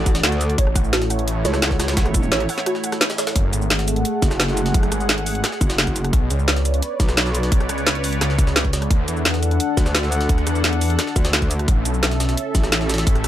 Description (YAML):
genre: dark technical drum and bass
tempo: 173 BPM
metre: 4/4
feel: straight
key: F# minor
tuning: A4 = 439 Hz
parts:
  - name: sweeping resonant pad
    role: sustained chords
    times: 0.0-13.3 s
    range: A3 to F#5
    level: -26 LUFS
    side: equal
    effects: chorus, sidechain pumping
  - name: soft round pluck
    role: arpeggios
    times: 0.0-3.3 s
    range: F#4 to F#5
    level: -27 LUFS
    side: right 2 dB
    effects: ensemble chorus, sidechain pumping, tape echo
  - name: metallic wobble bass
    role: bass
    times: 0.0-7.5, 9.8-13.1 s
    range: F#1 to D2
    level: -21 LUFS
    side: equal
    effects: distortion, chorus
  - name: drum and bass drum kit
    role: drums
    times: 0.1-13.3 s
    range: hi-hat, rim click, shaker, snare drum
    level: -21 LUFS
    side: equal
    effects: overdrive
  - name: electronic kick drum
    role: drums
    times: 0.1-13.1 s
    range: none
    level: -18 LUFS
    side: equal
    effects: none
  - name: jungle sampler-style drum kit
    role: drums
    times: 0.1-13.3 s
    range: hi-hat, snare drum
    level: -29 LUFS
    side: equal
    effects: high-pass filter on hats, high-pass filter on snare
  - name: wide detuned saw bass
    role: bass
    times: 0.6-13.3 s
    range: F#1 to E2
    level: -21 LUFS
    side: equal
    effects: chorus, overdrive
room: little or no reverb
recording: none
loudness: -17 LUFS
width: side -12 dB against mid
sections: 0.0-3.4 A section; 3.4-13.3 A section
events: drop 0.0-3.4, 3.4-13.3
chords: 0.0 D; 0.6 A; 3.4 F#madd9; 6.1 Bmadd9; 8.9 D; 11.7 A